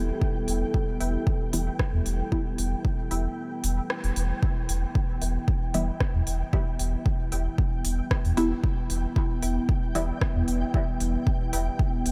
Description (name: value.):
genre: dub techno.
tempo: 114 BPM.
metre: 4/4.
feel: straight.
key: E minor.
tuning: A4 = 438 Hz.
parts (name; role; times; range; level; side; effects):
deep dark ambient pad; sustained chords; 0.0-12.1 s; B3 to E5; -36 LUFS; equal; chorus, built-in reverb, sidechain pumping.
filtered dub chord stab; stabs; 0.0-10.7 s; E3 to E4; -35 LUFS; equal; phaser, sidechain pumping, dub echo.
soft dub sub bass; bass; 0.0-12.1 s; E1 to E2; -29 LUFS; equal; tube saturation, sidechain pumping.
flickering grainy texture; texture; 0.0-12.1 s; G5; -43 LUFS; equal; built-in reverb, ensemble chorus, sidechain pumping.
electronic kick drum; drums; 0.2-11.9 s; none; -28 LUFS; equal; overdrive.
deep house drum kit; drums; 0.5-12.1 s; hi-hat, rim click; -38 LUFS; equal; none.
filtered dub chord stab; riff; 1.0-11.7 s; B4 to G5; -46 LUFS; equal; subtle chorus, cassette tape, sidechain pumping, dub echo.
room: light reverb.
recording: none.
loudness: -27 LUFS.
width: mono.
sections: 0.0-4.4 A section; 4.4-12.1 A section.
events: kick drops out 3.4-4.4; band accent 3.9.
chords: 0.0 Em.